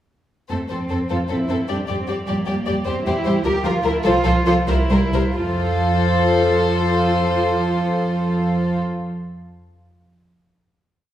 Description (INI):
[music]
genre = quick classical-period movement for string orchestra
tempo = 86-103 BPM (dotted quarters)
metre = 6/8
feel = straight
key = F major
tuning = A4 = 440 Hz
[part]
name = warm symphonic violin section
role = melody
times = 0.5-8.8 s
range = Bb4 to D5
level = -26 LUFS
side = left 4 dB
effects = none
[part]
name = warm symphonic violin section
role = second line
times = 0.5-8.8 s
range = G4 to Bb4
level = -25 LUFS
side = left 3 dB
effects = none
[part]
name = dark symphonic viola section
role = accompaniment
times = 0.5-8.8 s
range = F3 to C4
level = -23 LUFS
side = equal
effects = none
[part]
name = warm symphonic cello section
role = bass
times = 0.5-8.8 s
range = A3 to G4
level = -24 LUFS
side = right 3 dB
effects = none
[part]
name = warm symphonic double bass section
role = bass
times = 0.5-8.8 s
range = C2 to F2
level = -23 LUFS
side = right 1 dB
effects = none
[sound]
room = wet recital hall reverb, RT60 1.5 s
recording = heard from further back in the room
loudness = -17 LUFS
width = side -11 dB against mid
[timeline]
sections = 0.5-5.4 A section; 5.4-8.0 final chord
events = slowing down 2.3-5.4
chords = 0.5 F; 1.7 Gm7/F; 2.9 C/E; 3.4 Bb/D; 4.0 F/C; 4.7 C7; 5.4 F